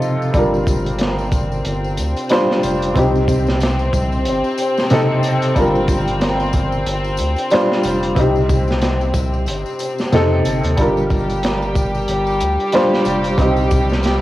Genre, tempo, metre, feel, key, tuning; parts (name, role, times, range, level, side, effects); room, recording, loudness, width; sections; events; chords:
trip hop; 92 BPM; 4/4; swing 58% on 16ths; G minor; A4 = 440 Hz
warm upright piano; accompaniment; 0.0-14.2 s; C3 to C5; -18 LUFS; equal; harmonic tremolo, cassette tape, tape echo
dark studio string section; sustained chords; 0.0-14.2 s; F3 to G4; -22 LUFS; left 1 dB; cassette tape
tambourine; percussion; 0.0-14.2 s; -39 LUFS; left 8 dB
round analog bass; bass; 0.3-14.2 s; F1 to F2; -21 LUFS; equal; tube saturation
crunchy breakbeat drum kit; drums; 0.3-14.2 s; hi-hat, kick drum, snare drum; -21 LUFS; equal; vintage 12-bit sampler grit, cassette tape
studio reverb; home recording on cassette, vinyl crackle; -15 LUFS; side -15 dB against mid
0.3-14.2 A section
0.3 Gm7; 3.0 Cm; 5.6 Gm7; 8.2 Cm; 10.8 Gm7; 13.4 Cm